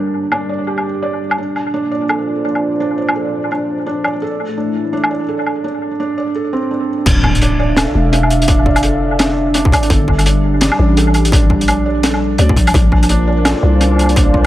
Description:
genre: half-time drum and bass.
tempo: 169 BPM.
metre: 4/4.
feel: swing 60% on 16ths, half-time.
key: D minor.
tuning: A4 = 440 Hz.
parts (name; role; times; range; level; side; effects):
dark analog pad; sustained chords; 0.0-14.5 s; G3 to F5; -21 LUFS; left 2 dB; chorus, sidechain pumping.
felt-muted upright piano; arpeggios; 0.0-14.5 s; C4 to D5; -18 LUFS; right 3 dB; vintage 12-bit sampler grit, low-pass filter, tape echo.
crunchy breakbeat drum kit; drums; 0.3-14.2 s; crash cymbal, hi-hat, snare drum, woodblock; -18 LUFS; equal; analog delay.
growling 808-style bass; bass; 7.1-14.5 s; D1 to D2; -14 LUFS; equal; none.
electronic kick drum; drums; 7.1-14.4 s; none; -14 LUFS; equal; distortion.
impact; sound effects; 7.1-8.5 s; none; -22 LUFS; left 1 dB; none.
room: light reverb, studio reverb.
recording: echo-heavy mix.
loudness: -12 LUFS.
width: side -14 dB against mid.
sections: 0.0-7.1 A section; 7.1-14.5 B section.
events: drop 7.1-14.5; impact 7.1-8.5.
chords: 0.0 Gm; 1.4 Bb; 4.2 Am; 7.1 Dm; 9.9 Gm; 12.7 Bb.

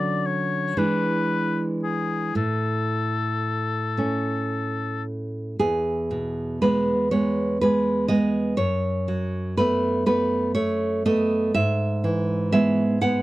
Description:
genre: romantic duo for oboe and classical guitar.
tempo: 36-42 BPM (dotted quarters).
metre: 6/8.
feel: rubato.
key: A major, E major from 5.6 s.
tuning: A4 = 440 Hz.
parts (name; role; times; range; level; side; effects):
clear oboe; melody; 0.0-5.0 s; G#4 to D5; -27 LUFS; left 5 dB; none.
nylon-string guitar; accompaniment; 0.0-13.2 s; E2 to F#5; -22 LUFS; right 1 dB; none.
room: little or no reverb.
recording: dry, close 1970s-style studio recording.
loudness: -21 LUFS.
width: side -17 dB against mid.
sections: 0.0-5.6 A section; 5.6-13.2 B section.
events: none.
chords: 0.0 Dmaj7; 0.8 E7; 2.4 A; 5.6 E; 8.6 B5/F#; 11.5 E/G#.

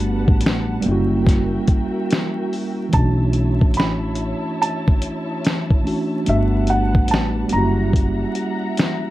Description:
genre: lo-fi hip hop.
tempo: 72 BPM.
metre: 4/4.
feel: swing 65% on 16ths.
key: B minor.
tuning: A4 = 442 Hz.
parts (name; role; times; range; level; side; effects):
felt-muted upright piano; melody; 0.0-9.1 s; E5 to B5; -25 LUFS; right 1 dB; low-pass filter, plate reverb.
mellow tine electric piano; accompaniment; 0.0-9.1 s; E3 to F#4; -22 LUFS; right 1 dB; medium stereo tremolo, low-pass filter, plate reverb.
dark studio string section; sustained chords; 0.0-9.1 s; G3 to A#5; -30 LUFS; left 2 dB; low-pass filter, plate reverb.
upright bass; bass; 0.0-8.2 s; F#1 to B1; -21 LUFS; equal; none.
lo-fi sampler-style drum kit; drums; 0.0-9.0 s; hi-hat, kick drum, snare drum; -18 LUFS; equal; none.
room: light reverb.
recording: dark, warm production, vinyl crackle.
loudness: -17 LUFS.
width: side -16 dB against mid.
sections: 0.0-9.1 A section.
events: none.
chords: 0.0 Gmaj9; 0.9 F#7b9; 2.9 Bm11; 6.3 Gmaj9; 7.5 F#7b9.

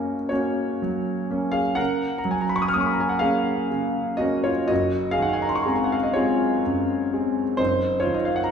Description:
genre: classical, romantic nocturne for solo piano.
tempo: 41 BPM (dotted quarters).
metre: 12/8.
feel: rubato.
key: F# major.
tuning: A4 = 438 Hz.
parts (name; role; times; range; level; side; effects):
warm concert grand piano; solo; 0.0-8.5 s; F#1 to E#6; -21 LUFS; equal; none.
room: wet recital hall reverb, RT60 1.6 s.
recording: heard from further back in the room.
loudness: -21 LUFS.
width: side -7 dB against mid.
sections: 0.0-8.5 A section.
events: none.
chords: 0.0 F#; 4.7 G#7/F#.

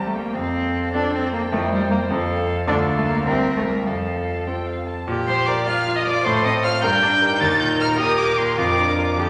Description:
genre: quick classical-period movement for piano quartet.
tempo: 102 BPM (dotted quarters).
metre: 6/8.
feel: straight.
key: F major, Bb major from 5.1 s.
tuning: A4 = 440 Hz.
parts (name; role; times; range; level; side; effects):
rich violin; melody; 0.0-9.2 s; E5 to A6; -27 LUFS; equal; none.
rich cello; second line; 0.0-9.3 s; F3 to Bb4; -26 LUFS; equal; none.
rich violin; second line; 0.0-9.3 s; G4 to G5; -28 LUFS; equal; none.
clear concert grand piano; accompaniment; 0.0-9.3 s; C2 to C5; -25 LUFS; equal; none.
room: wet scoring stage reverb, RT60 1.6 s.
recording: none.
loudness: -20 LUFS.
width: mono.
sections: 0.0-5.1 A section; 5.1-9.3 B section.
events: none.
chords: 0.3 F; 1.5 C7/F; 2.1 F; 2.7 Dm; 3.3 C7; 3.9 F; 5.1 Bb5; 6.3 F/A; 6.8 Gm; 7.4 Eb; 8.6 Bb/F.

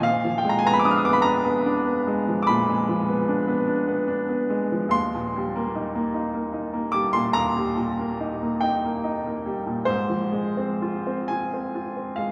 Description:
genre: classical, romantic nocturne for solo piano.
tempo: 40-52 BPM (dotted quarters).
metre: 12/8.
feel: rubato.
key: unclear.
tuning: A4 = 439 Hz.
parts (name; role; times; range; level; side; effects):
clear baby grand piano; solo; 0.0-12.3 s; Eb2 to F6; -24 LUFS; equal; none.
room: wet cathedral reverb, RT60 4.4 s.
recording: recorded in a church or concert hall.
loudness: -24 LUFS.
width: mono.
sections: 0.0-12.3 A section.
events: none.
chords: 0.1 Bb7b9; 4.9 Eb; 9.9 Fm/Ab.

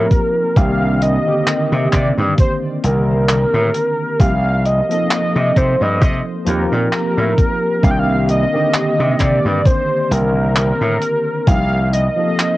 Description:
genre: vaporwave.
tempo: 66 BPM.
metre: 4/4.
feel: swing 55% on 16ths.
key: C dorian.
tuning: A4 = 440 Hz.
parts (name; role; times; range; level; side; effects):
warm velvety synth lead; melody; 0.0-12.6 s; Bb4 to G5; -18 LUFS; equal; chorus, cassette tape, tape echo.
tine electric piano; accompaniment; 0.0-12.6 s; D3 to A4; -20 LUFS; equal; medium stereo tremolo, analog chorus, cassette tape.
gritty slap bass; bass; 0.0-12.1 s; C2 to C3; -17 LUFS; equal; overdrive.
damped 70s drum kit; drums; 0.1-12.6 s; handclaps, hi-hat; -22 LUFS; equal; vintage 12-bit sampler grit, cassette tape.
electronic kick drum; drums; 0.1-11.7 s; none; -14 LUFS; equal; vintage 12-bit sampler grit, cassette tape.
room: light reverb, small room reverb.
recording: home recording on cassette.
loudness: -13 LUFS.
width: side -17 dB against mid.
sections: 0.0-12.6 A section.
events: none.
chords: 0.0 F9sus4; 0.6 Cm9; 4.2 F9sus4/C; 7.8 Cm9; 11.5 F9sus4/C.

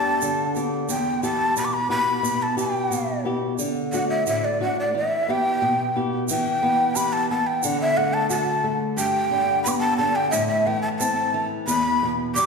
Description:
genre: andean folk, Andean ensemble.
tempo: 89 BPM.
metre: 2/4.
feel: straight.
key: E minor.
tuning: A4 = 435 Hz.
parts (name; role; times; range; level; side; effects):
breathy large quena; melody; 0.0-12.5 s; D5 to D6; -22 LUFS; equal; none.
flamenco guitar; accompaniment; 0.0-12.5 s; E2 to G4; -25 LUFS; left 1 dB; none.
egg shaker; percussion; 0.2-12.5 s; none; -32 LUFS; right 6 dB; none.
room: wet recital hall reverb, RT60 1.8 s.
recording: recorded in a church or concert hall.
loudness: -20 LUFS.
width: side -4 dB against mid.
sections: 0.0-6.3 A section; 6.3-12.5 B section.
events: none.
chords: 0.0 G; 0.9 Em; 3.6 D; 4.9 Em; 7.6 D; 9.0 G; 10.3 Am; 11.7 Em.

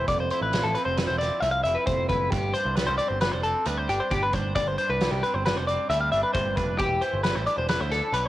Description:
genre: math rock and midwest emo.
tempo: 134 BPM.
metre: 5/4.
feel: straight.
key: unclear.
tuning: A4 = 440 Hz.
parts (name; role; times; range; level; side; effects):
twangy electric guitar; accompaniment; 0.0-8.3 s; F2 to E4; -34 LUFS; right 8 dB; cassette tape.
twelve-string electric guitar; arpeggios; 0.0-8.3 s; G4 to F5; -25 LUFS; left 2 dB; cassette tape.
picked electric bass; bass; 0.0-8.3 s; E1 to D2; -30 LUFS; equal; none.
loose indie drum kit; drums; 0.1-8.2 s; hi-hat, kick drum, snare drum; -30 LUFS; right 1 dB; none.
room: moderate spring reverb, RT60 2.2 s.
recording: home recording on cassette.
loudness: -23 LUFS.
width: side -15 dB against mid.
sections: 0.0-8.3 A section.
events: none.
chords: 0.1 Fmaj7; 2.3 G7sus4; 6.8 Em7.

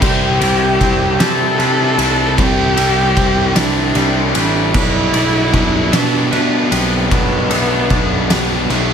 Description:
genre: post-rock.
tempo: 51 BPM (dotted quarters).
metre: 6/8.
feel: straight.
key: unclear.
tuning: A4 = 436 Hz.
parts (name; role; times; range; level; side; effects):
dark cello; melody; 0.0-8.7 s; B3 to A4; -18 LUFS; equal; slapback echo.
twangy electric guitar; arpeggios; 0.0-8.9 s; B2 to D4; -25 LUFS; left 3 dB; slapback echo.
twangy electric guitar; arpeggios; 0.0-8.3 s; A4 to E5; -27 LUFS; right 6 dB; spring reverb, slapback echo.
distorted electric guitar; riff; 0.0-8.9 s; B2 to E4; -22 LUFS; left 14 dB; distortion.
overdriven semi-hollow guitar; riff; 0.0-8.9 s; B2 to E4; -21 LUFS; right 12 dB; phaser.
fuzz picked electric bass; bass; 0.0-8.9 s; A1 to C3; -19 LUFS; equal; overdrive.
oversized low-tuned drum kit; drums; 0.0-8.9 s; crash cymbal, kick drum, ride cymbal, snare drum; -17 LUFS; left 1 dB; none.
room: light reverb, studio reverb.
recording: faint mains hum.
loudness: -12 LUFS.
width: side -7 dB against mid.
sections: 0.0-8.9 A section.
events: none.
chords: 0.0 C; 4.7 Gadd9/B.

